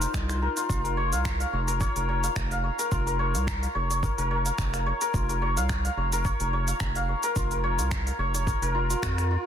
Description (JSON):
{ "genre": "organic downtempo", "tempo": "108 BPM", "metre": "4/4", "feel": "swing 55% on 16ths", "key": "unclear", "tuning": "A4 = 440 Hz", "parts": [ { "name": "santur", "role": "arpeggios", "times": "0.0-9.5 s", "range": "Eb4 to Bb5", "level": "-28 LUFS", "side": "left 2 dB", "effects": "tape echo" }, { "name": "round analog bass", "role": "bass", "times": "0.0-9.4 s", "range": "F1 to F2", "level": "-28 LUFS", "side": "equal", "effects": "none" }, { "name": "organic electronic drum kit", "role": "drums", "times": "0.0-9.3 s", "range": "finger snaps, hi-hat, shaker", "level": "-35 LUFS", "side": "right 1 dB", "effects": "soft clipping on snare" }, { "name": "electronic kick drum", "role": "drums", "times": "0.1-9.2 s", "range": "none", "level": "-30 LUFS", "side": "equal", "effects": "overdrive" } ], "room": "little or no reverb", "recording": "dense, heavily limited modern master", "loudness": "-24 LUFS", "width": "side -9 dB against mid", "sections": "0.0-9.5 A section", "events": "none", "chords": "0.0 F7sus4; 0.7 Bbm/F", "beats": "0.14 | 0.70 1.25 1.81 2.36 | 2.92 3.47 4.03 4.58 | 5.14 5.70 6.25 6.81 | 7.36 7.92 8.47 9.03" }